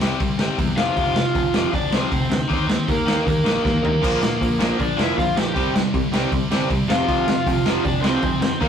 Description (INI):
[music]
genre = punk rock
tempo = 157 BPM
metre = 4/4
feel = straight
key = unclear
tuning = A4 = 440 Hz
[part]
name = overdriven semi-hollow guitar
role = riff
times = 0.0-8.7 s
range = F2 to Eb4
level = -25 LUFS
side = left 6 dB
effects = none
[part]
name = scooped high-gain guitar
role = riff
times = 0.0-8.7 s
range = F2 to Eb4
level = -30 LUFS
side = equal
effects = distortion
[part]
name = growling picked electric bass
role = bass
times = 0.0-8.7 s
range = F1 to E2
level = -28 LUFS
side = equal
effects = overdrive
[part]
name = raw garage drum kit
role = drums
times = 0.0-8.7 s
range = crash cymbal, hi-hat, kick drum, snare drum, toms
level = -23 LUFS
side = equal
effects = none
[part]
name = raw garage guitar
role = melody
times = 0.8-8.7 s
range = Bb3 to G5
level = -22 LUFS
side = equal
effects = overdrive
[part]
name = crunchy overdriven guitar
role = riff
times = 4.0-8.7 s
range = F2 to Eb4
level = -25 LUFS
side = right 5 dB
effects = none
[sound]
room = light reverb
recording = rough rehearsal-room recording, warm saturation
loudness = -18 LUFS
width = side -8 dB against mid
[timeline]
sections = 0.0-8.7 A section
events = drum fill 3.6-4.0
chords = 0.0 C; 0.8 F5; 2.5 Eb5; 4.0 Bb; 5.5 C5; 6.9 F5